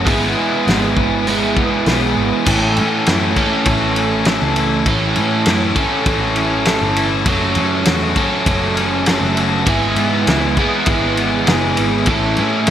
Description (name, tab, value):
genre	indie rock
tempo	100 BPM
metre	4/4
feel	straight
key	A major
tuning	A4 = 439 Hz
part	overdriven electric guitar	riff	0.0-12.7 s	A2 to B4	-20 LUFS	left 7 dB	none
part	overdriven electric guitar	riff	0.0-12.7 s	F#2 to A4	-17 LUFS	right 4 dB	analog chorus, digital delay
part	picked electric bass	bass	0.0-12.7 s	F#1 to A2	-22 LUFS	left 1 dB	none
part	loose indie drum kit	drums	0.1-12.7 s	crash cymbal, hi-hat, kick drum, ride cymbal, snare drum	-19 LUFS	left 1 dB	none
room	moderate plate reverb, RT60 1.5 s, small room ambience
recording	bright 1980s-style digital production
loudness	-13 LUFS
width	side -10 dB against mid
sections	0.0-2.5 A section; 2.5-12.7 B section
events	none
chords	0.1 E/G#; 2.5 A6; 7.3 F#m; 9.7 E/G#; 12.1 A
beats	| 0.07 0.67 1.27 1.87 | 2.47 3.07 3.67 4.27 | 4.87 5.47 6.07 6.67 | 7.28 7.88 8.48 9.08 | 9.68 10.28 10.88 11.49 | 12.09 12.69